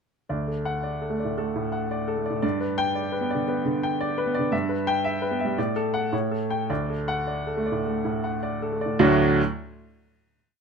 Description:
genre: classical, virtuoso piano study.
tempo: 102-116 BPM.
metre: 4/4.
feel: rubato.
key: D major.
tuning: A4 = 440 Hz.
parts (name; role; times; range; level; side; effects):
warm baby grand piano; solo; 0.3-9.4 s; D2 to G5; -23 LUFS; equal; none.
room: light reverb.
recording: close, detailed microphones.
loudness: -23 LUFS.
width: side -5 dB against mid.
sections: 0.3-9.0 A section; 9.0-10.6 final chord.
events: none.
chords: 0.3 D; 2.4 G; 4.5 Em/G; 5.6 D/A; 6.1 A7; 6.7 D.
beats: | 0.30 0.84 1.37 1.90 | 2.43 2.95 3.48 4.00 | 4.52 5.04 5.58 6.12 | 6.69 7.27 7.86 8.43 | 9.00.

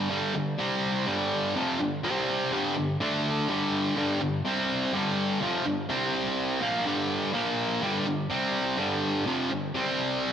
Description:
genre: rock.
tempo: 124 BPM.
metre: 4/4.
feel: straight.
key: unclear.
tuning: A4 = 440 Hz.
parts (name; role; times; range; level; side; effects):
sludgy distorted guitar; solo; 0.0-10.3 s; F2 to D4; -25 LUFS; equal; overdrive, slapback echo.
room: wet lush hall reverb, RT60 2.2 s.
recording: big arena sound, nothing above 10.4 kHz.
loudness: -25 LUFS.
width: side -8 dB against mid.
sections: 0.0-10.3 A section.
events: none.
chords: 0.0 G5; 0.6 C5; 1.1 G5; 2.0 C5; 2.5 G5; 3.0 D5; 3.5 G5; 4.4 C5; 4.9 G5; 5.9 C5; 6.6 G5; 7.3 Bb5; 7.8 G5; 8.3 C5; 8.8 G5; 9.8 C5.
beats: | 0.11 0.59 1.07 1.55 | 2.04 2.52 3.00 3.48 | 3.97 4.45 4.93 5.42 | 5.90 6.38 6.86 7.34 | 7.83 8.31 8.79 9.27 | 9.76 10.24.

